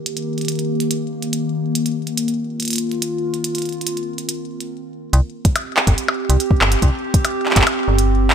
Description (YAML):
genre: IDM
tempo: 142 BPM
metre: 4/4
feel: straight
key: C minor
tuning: A4 = 440 Hz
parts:
  - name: warbly tape-like pad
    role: sustained chords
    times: 0.0-8.3 s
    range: Eb3 to Bb4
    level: -22 LUFS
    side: equal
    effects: chorus, built-in reverb
  - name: glitchy drum kit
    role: drums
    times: 0.1-8.3 s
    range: handclaps, hi-hat, percussion blips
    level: -20 LUFS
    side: right 1 dB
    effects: small room reverb, ping-pong delay
  - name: metallic FM bass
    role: bass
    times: 5.1-8.3 s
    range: G1 to C2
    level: -16 LUFS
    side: equal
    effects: tube saturation
  - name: electronic kick drum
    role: drums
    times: 5.5-7.6 s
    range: none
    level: -16 LUFS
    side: equal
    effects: small room reverb
room: moderate lush hall reverb, RT60 1.8 s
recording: bright 1980s-style digital production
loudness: -17 LUFS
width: side -8 dB against mid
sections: 0.0-5.1 A section; 5.1-8.3 B section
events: filter sweep on ambient pad 0.0-5.1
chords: 0.0 Cm7; 5.1 C5